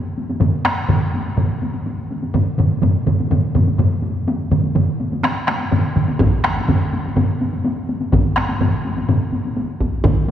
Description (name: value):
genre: japanese traditional, taiko drum ensemble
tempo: 124 BPM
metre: 4/4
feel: straight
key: none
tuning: none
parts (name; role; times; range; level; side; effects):
- taiko ensemble; percussion; 0.2-10.2 s; none; -24 LUFS; left 1 dB; none
- taiko ensemble; percussion; 0.4-10.3 s; none; -19 LUFS; left 1 dB; none
- taiko ensemble; percussion; 0.4-10.3 s; none; -22 LUFS; right 4 dB; none
- taiko ensemble; percussion; 6.2-10.2 s; none; -22 LUFS; equal; none
room: wet church reverb, RT60 3.5 s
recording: recorded in a church or concert hall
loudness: -16 LUFS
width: side -10 dB against mid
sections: 0.0-10.3 A section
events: none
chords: none